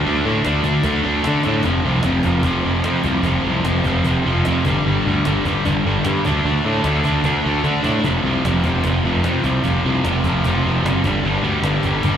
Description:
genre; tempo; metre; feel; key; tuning
punk rock; 150 BPM; 4/4; straight; unclear; A4 = 440 Hz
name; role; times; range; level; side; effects
distorted electric guitar; riff; 0.0-12.2 s; F2 to D4; -18 LUFS; equal; distortion
fuzz picked electric bass; bass; 0.1-12.2 s; F1 to D3; -20 LUFS; equal; overdrive
cajon; drums; 0.4-12.1 s; none; -28 LUFS; equal; none
room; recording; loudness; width
small room ambience; live gig heard through the venue's PA, recital hall reverb; -16 LUFS; side -9 dB against mid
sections
0.0-12.2 A section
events
drum fill 1.5, 7.6-8.0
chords
0.0 D5; 1.7 F5; 4.7 G5; 6.2 D5; 8.0 F5; 11.0 G5

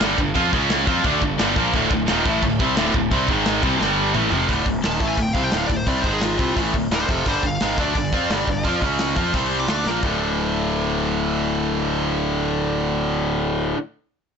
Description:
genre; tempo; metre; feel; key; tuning
heavy metal; 173 BPM; 4/4; straight; D minor; A4 = 440 Hz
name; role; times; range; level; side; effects
scooped high-gain guitar; riff; 0.0-4.5 s; D2 to F4; -23 LUFS; right 1 dB; distortion
tight distorted guitar; riff; 0.0-13.8 s; D2 to F4; -24 LUFS; left 12 dB; distortion
tight distorted guitar; riff; 0.0-13.8 s; D2 to F4; -24 LUFS; right 12 dB; distortion
fuzz fingered electric bass; bass; 0.0-13.7 s; D1 to F2; -27 LUFS; equal; overdrive
modern studio drum kit; drums; 0.0-10.1 s; china cymbal, hi-hat, kick drum, snare drum, toms; -24 LUFS; equal; none
high-gain lead guitar; melody; 4.9-9.9 s; F4 to D6; -27 LUFS; left 2 dB; distortion, ping-pong delay
room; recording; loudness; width
light reverb; blown-out, overdriven recording, overdrive, nothing above 7.9 kHz; -18 LUFS; side -6 dB against mid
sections
0.0-4.5 A section; 4.5-10.0 B section; 10.0-12.8 C section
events
drum fill 3.8-4.5, 9.9; lead electric guitar solo 4.5-10.0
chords
0.0 G5; 0.5 C#5; 0.9 G5; 1.7 D5; 3.3 G#5; 3.6 C5; 3.8 G5; 4.1 Fmaj7; 4.5 D5; 6.0 G#5; 6.4 Dm; 7.3 G5; 8.8 C#5; 9.2 F5; 9.3 C5; 9.7 Bbmaj7; 10.0 D5

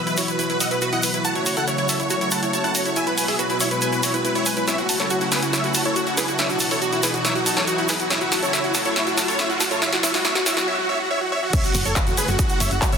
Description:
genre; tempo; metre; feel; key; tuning
uplifting trance; 140 BPM; 4/4; straight; F# minor; A4 = 442 Hz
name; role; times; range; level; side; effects
big supersaw lead; melody; 0.0-13.0 s; E4 to A5; -24 LUFS; right 1 dB; sidechain pumping, digital delay
plucky unison lead; second line; 0.0-13.0 s; F#4 to A5; -28 LUFS; equal; wide subtle chorus, sidechain pumping, tape echo
lush unison pad; sustained chords; 0.0-13.0 s; B2 to F#4; -28 LUFS; left 1 dB; chorus, phaser, sidechain pumping
riser and impact; sound effects; 1.3-13.0 s; none; -31 LUFS; equal; none
analog pluck; arpeggios; 0.1-10.6 s; E4 to E6; -28 LUFS; right 2 dB; chorus, sidechain pumping, tape echo
big-room dance drum kit; drums; 0.1-13.0 s; crash cymbal, handclaps, hi-hat, snare drum; -25 LUFS; equal; high-pass filter on hats, studio reverb, soft clipping on snare, high-pass filter on snare, high-pass filter on cymbals
egg shaker; percussion; 0.1-13.0 s; none; -29 LUFS; right 2 dB; none
electronic kick drum; drums; 11.5-12.9 s; none; -22 LUFS; equal; studio reverb
solid FM bass; bass; 11.7-13.0 s; E1 to F#1; -25 LUFS; equal; sidechain pumping
room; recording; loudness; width
moderate huge ambient reverb, RT60 4.5 s; dense, heavily limited modern master, high-pass filter; -18 LUFS; side -6 dB against mid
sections
0.0-11.5 A section; 11.5-13.0 B section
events
build-up 0.0-11.5; riser 1.3-10.7; drum fill 4.7-10.7; break 10.7-11.5; drop 11.5-13.0; impact 11.5-13.0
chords
0.0 Bsus4; 1.2 F#m7; 3.0 Eadd9; 4.7 F#m7; 6.4 Bsus4; 8.1 F#m7; 9.8 Eadd9; 11.5 F#m7

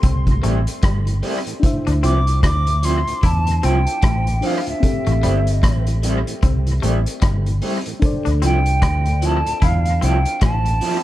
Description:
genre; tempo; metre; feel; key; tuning
lovers rock reggae; 75 BPM; 4/4; swing 59% on 16ths; D minor; A4 = 441 Hz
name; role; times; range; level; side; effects
hollow concert flute; melody; 0.0-11.0 s; E5 to D6; -24 LUFS; right 1 dB; tape echo
mellow FM electric piano; accompaniment; 0.0-11.0 s; C4 to E5; -28 LUFS; left 4 dB; chorus, dub echo
twangy electric guitar; riff; 0.0-10.7 s; G3 to E4; -31 LUFS; left 7 dB; wide subtle chorus
vintage muted fingered electric bass; bass; 0.0-10.8 s; G1 to E2; -18 LUFS; equal; none
vintage drum kit; drums; 0.0-11.0 s; hi-hat, kick drum, rim click; -20 LUFS; equal; dub echo
mellow tonewheel organ; accompaniment; 0.3-10.9 s; D2 to G4; -31 LUFS; right 4 dB; slow rotary speaker, dub echo
electric guitar through a small old amp; stabs; 0.4-11.0 s; F3 to E4; -26 LUFS; right 2 dB; tremolo
room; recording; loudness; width
little or no reverb; dark, warm production; -16 LUFS; side -14 dB against mid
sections
0.0-11.0 A section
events
none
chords
0.0 Am7; 1.6 Dm9; 4.8 Am7; 8.0 Dm9

